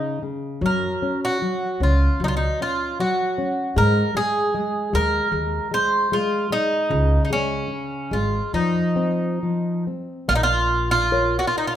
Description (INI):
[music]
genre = fado-style ballad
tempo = 66-78 BPM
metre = 4/4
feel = rubato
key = Db major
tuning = A4 = 440 Hz
[part]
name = Irish bouzouki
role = melody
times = 0.0-11.7 s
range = Db4 to C5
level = -22 LUFS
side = right 1 dB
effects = none
[part]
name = nylon-string guitar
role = accompaniment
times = 0.0-11.8 s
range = Db3 to Db5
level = -25 LUFS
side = left 2 dB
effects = none
[part]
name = upright bass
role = bass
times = 0.6-11.4 s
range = Ab1 to Ab2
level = -22 LUFS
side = right 1 dB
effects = none
[sound]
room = moderate recital hall reverb, RT60 1.3 s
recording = minimal, uncompressed stereo recording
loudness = -19 LUFS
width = side -10 dB against mid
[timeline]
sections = 0.0-10.3 A section; 10.3-11.8 B section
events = none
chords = 0.0 Dbsus2; 0.6 Gb5; 3.8 Ab5; 6.9 Db5; 8.5 F5; 10.3 Bbm